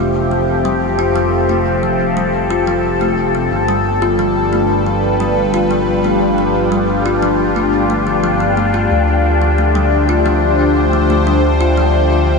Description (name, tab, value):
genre	IDM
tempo	89 BPM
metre	4/4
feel	straight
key	unclear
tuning	A4 = 441 Hz
part	phased analog pad	sustained chords	0.0-12.4 s	D3 to E5	-15 LUFS	left 1 dB	phaser, chorus
part	kalimba	arpeggios	0.0-11.9 s	F3 to F4	-19 LUFS	left 2 dB	diffuse ambient delay
part	dark detuned saw bass	bass	0.0-12.4 s	F1 to D2	-18 LUFS	left 1 dB	none
part	flickering grainy texture	texture	0.0-12.4 s	G4 to G5	-24 LUFS	left 2 dB	built-in reverb
room	wet huge ambient reverb, RT60 8.1 s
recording	dreamy mix soaked in reverb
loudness	-12 LUFS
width	side -4 dB against mid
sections	0.0-12.4 A section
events	none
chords	0.0 Fmaj9; 3.5 G7; 8.9 Dm7